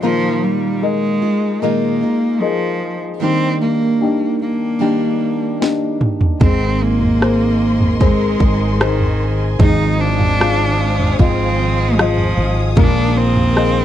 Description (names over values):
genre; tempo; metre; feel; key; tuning
pop ballad; 76 BPM; 4/4; straight; Eb major; A4 = 440 Hz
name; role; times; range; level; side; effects
rich cello; melody; 0.0-13.8 s; Eb3 to Eb4; -18 LUFS; equal; slapback echo
dark upright piano; accompaniment; 0.0-13.8 s; Eb3 to F5; -21 LUFS; left 7 dB; none
picked steel-string acoustic guitar; arpeggios; 0.0-13.8 s; Ab2 to Bb4; -23 LUFS; right 12 dB; none
house drum kit; drums; 5.6-13.7 s; kick drum, rim click, snare drum, toms; -15 LUFS; equal; none
warm studio string section; sustained chords; 6.4-13.8 s; Bb4 to Eb6; -27 LUFS; left 1 dB; none
fretless electric bass; bass; 6.4-13.8 s; Ab1 to Bb1; -18 LUFS; equal; wide subtle chorus
room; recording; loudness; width
little or no reverb; dry, close 1970s-style studio recording; -13 LUFS; side -11 dB against mid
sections
0.0-13.8 A section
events
drum fill 5.6-6.4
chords
0.0 Bb7sus4; 3.2 Ebmaj7; 6.4 Abadd9; 9.6 Fm7/Ab; 12.8 Bb7sus4